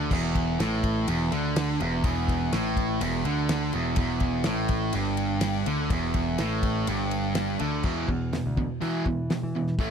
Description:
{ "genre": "classic rock", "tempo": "124 BPM", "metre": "4/4", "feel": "straight", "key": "E minor", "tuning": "A4 = 440 Hz", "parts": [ { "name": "biting overdriven guitar", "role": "riff", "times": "0.0-9.9 s", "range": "E2 to A3", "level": "-29 LUFS", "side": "right 12 dB", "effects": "none" }, { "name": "distorted electric guitar", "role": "riff", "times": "0.0-9.9 s", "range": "E2 to A3", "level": "-30 LUFS", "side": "left 14 dB", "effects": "distortion" }, { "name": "overdriven picked electric bass", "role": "bass", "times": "0.0-9.9 s", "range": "E1 to E3", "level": "-30 LUFS", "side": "left 1 dB", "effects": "none" }, { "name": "damped 70s drum kit", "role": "drums", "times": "0.1-9.9 s", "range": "crash cymbal, hi-hat, kick drum, ride cymbal, snare drum", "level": "-30 LUFS", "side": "left 1 dB", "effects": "none" } ], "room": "little or no reverb", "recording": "dry, close 1970s-style studio recording", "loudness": "-24 LUFS", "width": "side -7 dB against mid", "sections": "0.0-7.8 A section; 7.8-9.9 B section", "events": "none", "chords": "0.0 Em; 7.8 E5" }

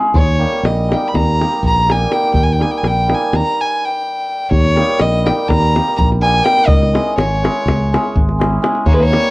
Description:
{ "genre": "balkan folk, Balkan wedding band", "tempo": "248 BPM (eighths)", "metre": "9/8", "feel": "straight", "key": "unclear", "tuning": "A4 = 440 Hz", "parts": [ { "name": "hammered dulcimer", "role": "accompaniment", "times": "0.0-9.3 s", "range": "G3 to Ab4", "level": "-20 LUFS", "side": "right 1 dB", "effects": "none" }, { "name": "modern bright fingered electric bass", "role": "bass", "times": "0.1-9.2 s", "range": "Ab1 to Eb2", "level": "-16 LUFS", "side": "equal", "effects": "none" }, { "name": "dark violin", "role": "melody", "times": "0.2-9.3 s", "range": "Cb5 to Cb6", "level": "-17 LUFS", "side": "equal", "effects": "none" }, { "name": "davul", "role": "percussion", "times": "0.2-9.3 s", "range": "none", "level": "-18 LUFS", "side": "left 1 dB", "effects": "none" }, { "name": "rich violin", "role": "second line", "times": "8.9-9.3 s", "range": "Ab3 to Bb3", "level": "-20 LUFS", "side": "left 1 dB", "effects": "none" } ], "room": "moderate studio reverb, RT60 0.6 s", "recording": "worn, warbling old tape, cassette tape, warbly pitch drift", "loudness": "-12 LUFS", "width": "side -20 dB against mid", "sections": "0.0-4.5 A section; 4.5-9.3 A section", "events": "stop 3.4-4.5", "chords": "0.2 Eb; 6.7 Dbm" }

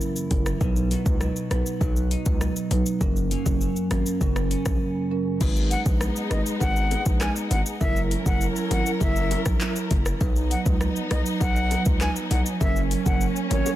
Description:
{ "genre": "dancehall", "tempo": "100 BPM", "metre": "4/4", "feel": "straight", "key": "unclear", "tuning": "A4 = 440 Hz", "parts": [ { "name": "marimba with medium mallets", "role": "accompaniment", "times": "0.0-13.8 s", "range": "F#3 to B4", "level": "-28 LUFS", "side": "right 4 dB", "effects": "none" }, { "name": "clean electric guitar", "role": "arpeggios", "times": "0.0-5.5 s", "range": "F#2 to E4", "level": "-30 LUFS", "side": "left 3 dB", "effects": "lush chorus" }, { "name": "afro-pop drum kit", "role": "drums", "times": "0.0-13.8 s", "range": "crash cymbal, handclaps, hi-hat, kick drum, rim click, shaker", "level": "-25 LUFS", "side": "equal", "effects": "none" }, { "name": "hard-hitting 808-style bass", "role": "bass", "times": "0.3-13.6 s", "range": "F#1 to C#2", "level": "-26 LUFS", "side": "equal", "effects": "none" }, { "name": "dark symphonic string section", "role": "sustained chords", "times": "5.4-13.8 s", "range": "F#3 to A#4", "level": "-32 LUFS", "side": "left 1 dB", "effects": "sidechain pumping" }, { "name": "bongos", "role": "percussion", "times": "5.4-13.8 s", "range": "none", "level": "-37 LUFS", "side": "left 11 dB", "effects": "none" }, { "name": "silver concert flute", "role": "melody", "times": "5.7-13.7 s", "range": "C#5 to G#5", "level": "-30 LUFS", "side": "left 2 dB", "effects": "ping-pong delay" } ], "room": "small room ambience", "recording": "dense, heavily limited modern master", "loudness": "-21 LUFS", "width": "side -14 dB against mid", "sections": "0.0-5.4 A section; 5.4-13.8 B section", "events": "none", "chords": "0.0 F#7; 0.6 B; 3.0 F#; 5.4 G#m; 7.8 F#7; 10.2 B; 12.6 F#" }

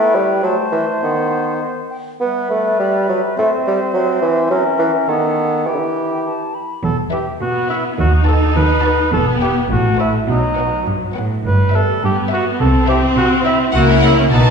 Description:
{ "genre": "cinematic", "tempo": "104 BPM", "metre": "2/4", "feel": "straight", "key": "E minor", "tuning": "A4 = 436 Hz", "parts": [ { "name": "bright clarinet", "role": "second line", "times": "0.0-6.5 s", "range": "G3 to E4", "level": "-26 LUFS", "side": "left 2 dB", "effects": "none" }, { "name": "hollow concert flute", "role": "second line", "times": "0.0-6.8 s", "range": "D#5 to B5", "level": "-26 LUFS", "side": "left 2 dB", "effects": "none" }, { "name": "mellow cor anglais", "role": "second line", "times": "0.0-14.5 s", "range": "C#4 to C5", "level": "-20 LUFS", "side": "right 1 dB", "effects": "none" }, { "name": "warm bassoon", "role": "accompaniment", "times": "0.0-6.2 s", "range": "D3 to B3", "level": "-16 LUFS", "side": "right 1 dB", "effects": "none" }, { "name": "rich studio cello section", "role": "bass", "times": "6.8-14.5 s", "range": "D#2 to C#3", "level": "-19 LUFS", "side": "right 1 dB", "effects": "none" }, { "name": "warm studio double bass section", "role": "bass", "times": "6.8-14.5 s", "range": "E1 to D#2", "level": "-19 LUFS", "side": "right 1 dB", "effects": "none" }, { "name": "rich studio violin section", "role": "melody", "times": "7.1-14.5 s", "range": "E5 to A5", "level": "-27 LUFS", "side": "left 3 dB", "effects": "none" }, { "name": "rich studio violin section", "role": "second line", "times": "7.1-14.5 s", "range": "B3 to C5", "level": "-23 LUFS", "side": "left 4 dB", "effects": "none" }, { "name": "rich studio viola section", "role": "accompaniment", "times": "7.4-14.4 s", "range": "F#3 to D#4", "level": "-19 LUFS", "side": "equal", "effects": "none" } ], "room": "wet recital hall reverb, RT60 1.6 s", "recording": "recorded in a church or concert hall, nothing above 10.9 kHz", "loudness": "-14 LUFS", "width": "side -6 dB against mid", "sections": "0.0-6.8 A section; 6.8-14.5 A section", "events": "none", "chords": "0.4 Am; 1.0 B/D#; 2.2 Em/G; 3.4 Am7; 4.5 F#7; 5.1 B7/D#; 5.7 Em; 6.8 E5; 8.0 B7/D#; 9.1 Em; 9.7 Am; 10.3 B; 11.5 Em/G; 12.6 C6; 13.7 F#7/C#" }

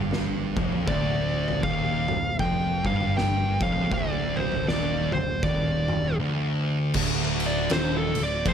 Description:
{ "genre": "stoner and doom metal", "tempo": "79 BPM", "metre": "4/4", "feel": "swing 60% on 8ths", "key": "D phrygian", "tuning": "A4 = 440 Hz", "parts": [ { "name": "thick fuzz guitar", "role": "riff", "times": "0.0-8.5 s", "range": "D2 to G2", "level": "-30 LUFS", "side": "left 8 dB", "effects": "distortion" }, { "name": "thick fuzz guitar", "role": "riff", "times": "0.0-8.5 s", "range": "D2 to G2", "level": "-29 LUFS", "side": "right 8 dB", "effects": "distortion" }, { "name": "overdriven picked electric bass", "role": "bass", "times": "0.0-8.5 s", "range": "D1 to G1", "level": "-32 LUFS", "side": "equal", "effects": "none" }, { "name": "oversized low-tuned drum kit", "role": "drums", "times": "0.1-8.5 s", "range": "crash cymbal, kick drum, ride cymbal, snare drum, toms", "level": "-29 LUFS", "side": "equal", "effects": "none" }, { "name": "fuzz lead guitar", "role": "melody", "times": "0.9-8.5 s", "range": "A4 to G5", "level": "-29 LUFS", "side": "right 1 dB", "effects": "distortion, tape echo" }, { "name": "distorted electric guitar", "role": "riff", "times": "7.0-8.5 s", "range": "D2 to F2", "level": "-33 LUFS", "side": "equal", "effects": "distortion" } ], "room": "light reverb", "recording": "none", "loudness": "-23 LUFS", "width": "side -8 dB against mid", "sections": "0.0-7.0 A section; 7.0-8.5 B section", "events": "lead electric guitar solo 7.0-8.5", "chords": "0.0 Dm" }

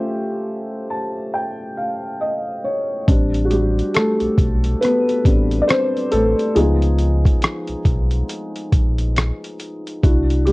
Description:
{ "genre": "lo-fi hip hop", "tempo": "69 BPM", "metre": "4/4", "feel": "swing 59% on 16ths", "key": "A minor", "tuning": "A4 = 440 Hz", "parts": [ { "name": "felt-muted upright piano", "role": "accompaniment", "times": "0.0-10.5 s", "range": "E#3 to A5", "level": "-20 LUFS", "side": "equal", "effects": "cassette tape, low-pass filter" }, { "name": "sub bass with octave", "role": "bass", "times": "3.1-10.5 s", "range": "A1 to C#2", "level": "-19 LUFS", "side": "equal", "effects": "none" }, { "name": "dusty soul sampler-style drum kit", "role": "drums", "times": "3.1-10.5 s", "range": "hi-hat, kick drum, rim click", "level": "-17 LUFS", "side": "equal", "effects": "none" } ], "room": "little or no reverb", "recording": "worn, warbling old tape, cassette tape, warbly pitch drift", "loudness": "-16 LUFS", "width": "side -22 dB against mid", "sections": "0.0-3.1 A section; 3.1-10.5 B section", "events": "felt piano fill 0.5-3.1; felt piano solo 3.1-10.5", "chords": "0.0 A7alt; 3.1 Am11; 6.6 C#9" }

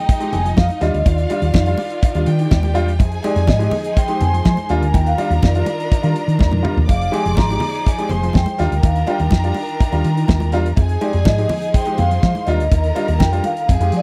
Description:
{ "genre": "disco", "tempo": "124 BPM", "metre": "4/4", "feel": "straight", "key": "unclear", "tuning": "A4 = 443 Hz", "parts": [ { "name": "vibraphone with soft mallets", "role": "melody", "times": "0.0-14.0 s", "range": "D5 to C6", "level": "-25 LUFS", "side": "equal", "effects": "slapback echo" }, { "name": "rich studio violin section", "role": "second line", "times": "0.0-14.0 s", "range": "Eb4 to D6", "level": "-31 LUFS", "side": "equal", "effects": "none" }, { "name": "clear studio string section", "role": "sustained chords", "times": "0.0-14.0 s", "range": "D3 to Ab4", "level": "-32 LUFS", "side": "equal", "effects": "none" }, { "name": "damped 70s drum kit", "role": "drums", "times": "0.1-14.0 s", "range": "hi-hat, kick drum, snare drum, toms", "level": "-18 LUFS", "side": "equal", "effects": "none" }, { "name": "congas", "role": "percussion", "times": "0.1-13.8 s", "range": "none", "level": "-30 LUFS", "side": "equal", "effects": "none" }, { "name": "cowbell", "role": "percussion", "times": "0.1-13.8 s", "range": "none", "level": "-38 LUFS", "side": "equal", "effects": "none" }, { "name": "warm concert grand piano", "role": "accompaniment", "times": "0.2-13.9 s", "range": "Eb3 to G4", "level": "-26 LUFS", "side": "equal", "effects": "none" }, { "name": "hollow-body short-scale fingered electric bass", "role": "bass", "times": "0.3-14.0 s", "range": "F1 to F3", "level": "-20 LUFS", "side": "equal", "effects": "none" } ], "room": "little or no reverb", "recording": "dry, close 1970s-style studio recording", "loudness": "-17 LUFS", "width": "mono", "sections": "0.0-14.0 A section", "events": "drum fill 6.4-6.9", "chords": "0.0 Fm9; 0.8 Ebmaj9; 3.0 Fm9; 4.7 Ebmaj9; 6.9 Fm9; 8.6 Ebmaj9; 10.8 Fm9; 12.5 Ebmaj9" }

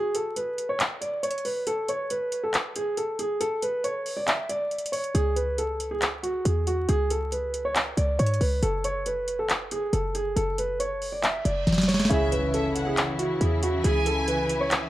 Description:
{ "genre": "hip hop, trap", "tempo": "138 BPM", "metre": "4/4", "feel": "half-time", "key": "C# phrygian", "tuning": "A4 = 439 Hz", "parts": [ { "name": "dark concert grand piano", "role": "melody", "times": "0.0-14.7 s", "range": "F#4 to E5", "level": "-27 LUFS", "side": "right 1 dB", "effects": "low-pass filter" }, { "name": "booming analog drum machine", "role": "drums", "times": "0.1-14.8 s", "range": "handclaps, hi-hat, snare drum", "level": "-27 LUFS", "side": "equal", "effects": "none" }, { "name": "short 808-style bass", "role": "bass", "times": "5.1-14.9 s", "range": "F#1 to G#2", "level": "-27 LUFS", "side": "equal", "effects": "none" }, { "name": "reverse cymbal and impact", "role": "sound effects", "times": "11.4-13.8 s", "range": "none", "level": "-38 LUFS", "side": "right 2 dB", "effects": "none" }, { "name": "warm studio violin section", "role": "second line", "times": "12.1-14.7 s", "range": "E5 to G#5", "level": "-32 LUFS", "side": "right 1 dB", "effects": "digital delay" }, { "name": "warm concert grand piano", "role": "accompaniment", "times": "12.1-14.9 s", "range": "C#3 to E4", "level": "-32 LUFS", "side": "left 2 dB", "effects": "low-pass filter" }, { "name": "warm symphonic string section", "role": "sustained chords", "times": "12.1-14.9 s", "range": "C#3 to E4", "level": "-31 LUFS", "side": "left 1 dB", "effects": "none" } ], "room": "light reverb, small room ambience", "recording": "vinyl crackle", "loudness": "-24 LUFS", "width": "side -15 dB against mid", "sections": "0.0-12.1 A section; 12.1-14.9 B section", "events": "break 0.0-5.1; reverse cymbal 11.4-12.1; drum fill 11.7-12.1; impact 12.1-13.8", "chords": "0.0 N.C.; 5.1 C#5; 8.6 F#m; 12.1 C#m" }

